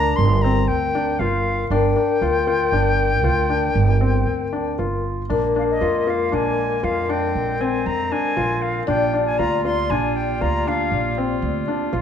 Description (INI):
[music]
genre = contemporary instrumental, chamber music in an uneven meter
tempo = 118 BPM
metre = 7/4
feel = straight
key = G phrygian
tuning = A4 = 440 Hz
[part]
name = bright concert flute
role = melody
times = 0.0-11.2 s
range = Eb5 to C6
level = -24 LUFS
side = left 1 dB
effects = none
[part]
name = vibraphone with soft mallets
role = second line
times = 0.0-12.0 s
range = Bb4 to D5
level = -24 LUFS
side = left 7 dB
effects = none
[part]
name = felt-muted upright piano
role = arpeggios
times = 0.0-12.0 s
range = C4 to F4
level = -24 LUFS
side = left 1 dB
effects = none
[part]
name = upright bass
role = bass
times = 0.0-12.0 s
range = G1 to F2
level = -23 LUFS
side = right 3 dB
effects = none
[part]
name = warm woodwind section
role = sustained chords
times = 5.3-12.0 s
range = D3 to F4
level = -30 LUFS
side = right 1 dB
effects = none
[sound]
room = moderate recital hall reverb, RT60 1.6 s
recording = dark, warm production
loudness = -18 LUFS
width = side -8 dB against mid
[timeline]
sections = 0.0-5.3 A section; 5.3-12.0 B section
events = none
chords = 0.0 Gm7; 5.3 Bb7; 8.9 Gm7/Bb